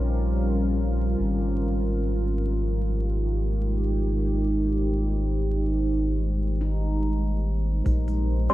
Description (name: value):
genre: ambient dub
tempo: free time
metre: none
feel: none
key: unclear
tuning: A4 = 440 Hz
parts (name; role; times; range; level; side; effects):
- deep dark ambient pad; sustained chords; 0.0-8.5 s; G3 to C5; -27 LUFS; right 1 dB; chorus, built-in reverb
- handpan; arpeggios; 0.0-7.6 s; Eb4 to G4; -39 LUFS; left 3 dB; diffuse ambient delay
- soft dub sub bass; bass; 0.0-8.5 s; Ab1 to Bb1; -25 LUFS; equal; none
- electronic hi-hat; drums; 7.9-8.5 s; none; -55 LUFS; right 1 dB; overdrive, low-pass filter on hats, low-pass filter on room
- electronic kick drum; drums; 7.9-8.0 s; none; barely audible; none; none
- filtered dub chord stab; stabs; 8.5 s; G3 to C5; -18 LUFS; equal; phaser, wide subtle chorus
room: light reverb, digital ambience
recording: vinyl crackle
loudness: -23 LUFS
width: side -15 dB against mid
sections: 0.0-7.9 A section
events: none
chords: 0.0 Bbm69; 1.2 Abmaj9; 7.9 Bbsus2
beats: free time